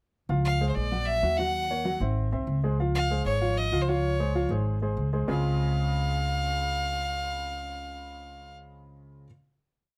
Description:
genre	Afro-Cuban jazz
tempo	192 BPM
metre	4/4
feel	straight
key	Db major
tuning	A4 = 445 Hz
part	warm upright piano	accompaniment	0.3-9.2 s	Db3 to F#5	-34 LUFS	equal	none
part	upright bass	bass	0.3-9.2 s	Ab1 to Eb2	-31 LUFS	equal	none
part	clear fiddle	melody	0.5-8.6 s	C5 to F#5	-32 LUFS	equal	none
room	light reverb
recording	close, detailed microphones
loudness	-27 LUFS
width	mono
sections	0.3-5.3 A section; 5.3-7.8 final chord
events	none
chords	0.3 Dbmaj7; 0.9 Bbaug; 1.5 Ebm7; 2.2 Abaug; 2.8 Dbmaj7

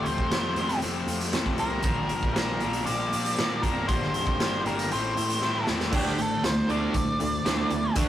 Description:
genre	quiet-loud alternative rock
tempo	118 BPM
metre	4/4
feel	straight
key	D minor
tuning	A4 = 443 Hz
part	octave-fuzz lead guitar	melody	0.0-7.9 s	G4 to D5	-30 LUFS	equal	distortion
part	electric guitar through a small old amp	arpeggios	0.0-8.1 s	G2 to A4	-38 LUFS	equal	none
part	distorted electric guitar	riff	0.0-8.1 s	F2 to E4	-30 LUFS	left 4 dB	distortion
part	fuzz picked electric bass	bass	0.0-8.1 s	F1 to Bb2	-35 LUFS	equal	overdrive
part	raw garage drum kit	drums	0.1-8.1 s	crash cymbal, hi-hat, kick drum, snare drum	-28 LUFS	right 1 dB	none
part	crunchy overdriven guitar	riff	5.9-8.1 s	D3 to D4	-29 LUFS	right 5 dB	none
room	moderate studio reverb, RT60 0.5 s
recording	rough rehearsal-room recording, warm saturation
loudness	-24 LUFS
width	side -12 dB against mid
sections	0.0-5.9 A section; 5.9-8.1 B section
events	drum fill 5.4-5.9; lead electric guitar solo 5.9-8.1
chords	0.0 Fadd9; 1.8 Bb6; 3.9 Gm7; 4.9 Am; 5.9 Dm

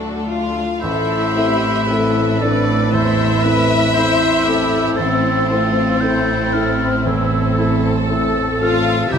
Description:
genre	cinematic, emotional film score for orchestra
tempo	58 BPM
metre	4/4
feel	rubato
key	A minor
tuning	A4 = 439 Hz
part	clear studio violin section	second line	0.0-9.2 s	C4 to A4	-24 LUFS	left 3 dB	none
part	felt-muted upright piano	accompaniment	0.0-9.2 s	A1 to D5	-22 LUFS	equal	none
part	rich studio viola section	accompaniment	0.0-9.2 s	A3 to C5	-24 LUFS	left 1 dB	none
part	warm studio cello section	bass	0.0-9.2 s	D2 to C3	-23 LUFS	right 1 dB	none
part	rich studio violin section	melody	0.3-9.2 s	C5 to F5	-24 LUFS	left 3 dB	none
part	dark French horn section	sustained chords	0.3-9.2 s	C4 to F4	-23 LUFS	left 4 dB	none
part	concert flute	second line	0.8-9.2 s	E6 to G6	-25 LUFS	left 1 dB	none
part	warm oboe	second line	0.8-9.2 s	E4 to C5	-25 LUFS	right 2 dB	none
part	rich studio double bass section	bass	0.8-9.2 s	A1 to C2	-24 LUFS	right 6 dB	none
room	moderate scoring stage reverb, RT60 1.6 s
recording	close, detailed microphones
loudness	-14 LUFS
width	side -7 dB against mid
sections	0.8-9.2 A section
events	none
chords	0.0 D; 0.8 Am

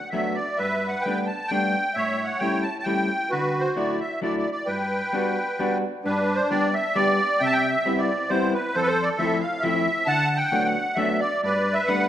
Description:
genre	musette waltz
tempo	133 BPM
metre	3/4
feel	rubato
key	G major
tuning	A4 = 441 Hz
part	musette accordion	melody	0.0-12.1 s	D4 to A5	-23 LUFS	equal	none
part	vintage hollow-body jazz guitar	accompaniment	0.1-12.1 s	F2 to G4	-26 LUFS	left 1 dB	none
room	wet recital hall reverb, RT60 1.7 s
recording	dark, warm production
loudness	-21 LUFS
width	side -11 dB against mid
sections	0.0-6.0 A section; 6.0-12.1 A section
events	none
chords	0.0 D6; 0.6 Gadd9; 2.0 A7; 3.3 Dadd9; 4.7 Gmaj7; 6.0 G; 7.4 Cmaj7; 8.8 Fmaj7; 10.1 D6; 11.4 Gadd9

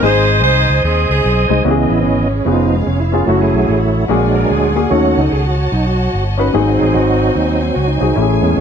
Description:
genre	uptempo gospel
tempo	148 BPM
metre	4/4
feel	swing 63% on 8ths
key	C# minor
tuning	A4 = 439 Hz
part	clear saxophone section	melody	0.0-1.6 s	B#3 to B#4	-14 LUFS	right 1 dB	none
part	warm baby grand piano	accompaniment	0.0-8.6 s	G#2 to D#5	-17 LUFS	left 4 dB	none
part	bright tonewheel organ	sustained chords	0.0-8.6 s	E3 to D#6	-16 LUFS	right 3 dB	chorus vibrato, stopped rotary speaker
part	fingered electric bass	bass	0.0-8.6 s	E#1 to E2	-16 LUFS	equal	none
part	dark studio string section	sustained chords	1.6-8.6 s	A3 to A5	-26 LUFS	left 1 dB	none
room	moderate echo chamber reverb, RT60 1.2 s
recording	none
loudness	-11 LUFS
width	side -7 dB against mid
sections	0.0-1.7 A section; 1.7-8.6 B section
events	tonewheel organ solo 1.7-8.6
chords	0.0 G#; 1.7 C#m7; 2.5 C#7/E#; 3.3 F#m7; 4.1 A#aug7; 4.9 D#m7b5; 6.5 G#7

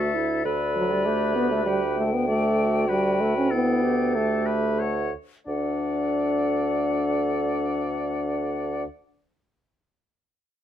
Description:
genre	quick classical-period movement for wind quintet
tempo	88-100 BPM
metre	4/4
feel	rubato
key	D major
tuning	A4 = 436 Hz
part	hollow concert flute	melody	0.0-8.8 s	D5 to G5	-31 LUFS	left 7 dB	none
part	warm oboe	second line	0.0-8.8 s	A4 to D5	-32 LUFS	left 2 dB	none
part	clear French horn	accompaniment	0.0-8.8 s	F#3 to D4	-25 LUFS	left 1 dB	none
part	clear clarinet	accompaniment	0.0-8.8 s	E4 to A4	-32 LUFS	right 6 dB	none
part	mellow bassoon	bass	0.0-8.8 s	D2	-29 LUFS	right 3 dB	none
room	light reverb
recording	none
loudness	-22 LUFS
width	side -10 dB against mid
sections	0.0-5.5 A section; 5.5-8.1 B section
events	slowing down 0.0-5.5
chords	0.5 G/D; 2.9 A7(no3)/D; 5.5 D

